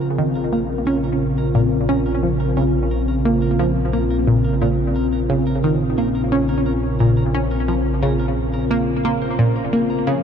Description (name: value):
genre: ambient, sequencer-driven space music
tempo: 88 BPM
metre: 4/4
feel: straight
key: Bb minor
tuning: A4 = 439 Hz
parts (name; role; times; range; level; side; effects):
- sweeping resonant pad; sustained chords; 0.0-10.2 s; Db3 to Bb4; -20 LUFS; equal; chorus
- clean electric guitar; arpeggios; 0.0-10.2 s; Ab4 to C6; -39 LUFS; right 2 dB; auto-pan, analog delay
- analog pluck; riff; 0.0-10.2 s; Bb2 to Db4; -20 LUFS; equal; chorus, phaser, analog delay
- fat analog bass; bass; 0.0-10.2 s; Bb1; -24 LUFS; left 1 dB; none
room: moderate huge ambient reverb, RT60 8.3 s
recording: dark, warm production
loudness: -16 LUFS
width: side -8 dB against mid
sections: 0.0-10.2 A section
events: fade-in on clean electric guitar 0.0-10.2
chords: 0.0 Bbmadd9